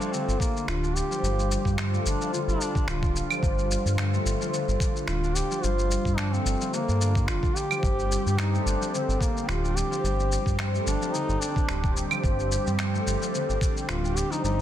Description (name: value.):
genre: organic downtempo.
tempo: 109 BPM.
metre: 4/4.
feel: swing 55% on 16ths.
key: unclear.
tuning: A4 = 440 Hz.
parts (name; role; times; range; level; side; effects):
mellow duduk; melody; 0.0-14.6 s; Bb3 to G4; -32 LUFS; right 1 dB; digital delay.
warm analog pad; sustained chords; 0.0-14.6 s; D3 to G4; -35 LUFS; right 2 dB; chorus, sidechain pumping.
concert harp; arpeggios; 0.0-14.6 s; D3 to F4; -30 LUFS; left 2 dB; tape echo.
electronic shaker, finger snaps and claves; drums; 0.0-14.6 s; none; -33 LUFS; equal; soft clipping on snare, studio reverb.
smooth gliding synth bass; bass; 0.3-14.6 s; D1 to G2; -27 LUFS; equal; sidechain pumping.
electronic kick drum; drums; 0.4-13.7 s; none; -26 LUFS; equal; studio reverb.
room: light reverb.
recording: dense, heavily limited modern master.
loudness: -24 LUFS.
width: side -11 dB against mid.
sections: 0.0-14.6 A section.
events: none.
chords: 0.0 G7(no3).